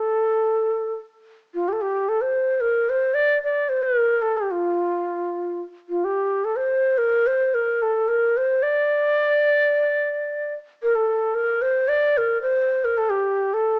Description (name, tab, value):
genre	turkish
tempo	110 BPM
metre	4/4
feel	straight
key	D minor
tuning	A4 = 440 Hz
part	breathy ney	solo	0.0-13.8 s	F4 to D5	-22 LUFS	equal	cassette tape
room	moderate spring reverb, RT60 1.3 s, studio ambience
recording	home recording on cassette, small speaker sound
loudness	-22 LUFS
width	mono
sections	0.0-10.8 A section; 10.8-13.8 B section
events	none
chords	none